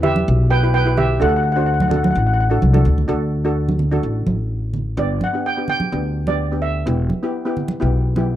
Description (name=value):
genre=calypso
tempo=127 BPM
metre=4/4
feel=swing 53% on 16ths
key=G major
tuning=A4 = 441 Hz
part: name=steel pan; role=melody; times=0.0-7.5 s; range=G4 to G5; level=-21 LUFS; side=right 1 dB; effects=none
part: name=steel pan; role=accompaniment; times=0.0-8.3 s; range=B3 to C5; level=-24 LUFS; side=equal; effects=none
part: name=upright bass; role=bass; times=0.0-8.4 s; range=E1 to E2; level=-18 LUFS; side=equal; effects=none
part: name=congas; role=percussion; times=0.0-8.3 s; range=none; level=-22 LUFS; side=right 2 dB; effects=none
room=small room ambience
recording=dry, close 1970s-style studio recording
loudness=-16 LUFS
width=side -12 dB against mid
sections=0.0-3.1 A section; 3.1-5.0 B section; 5.0-8.4 C section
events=drum fill 2.6-3.1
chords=0.0 Em; 1.2 D; 5.0 G; 6.9 Em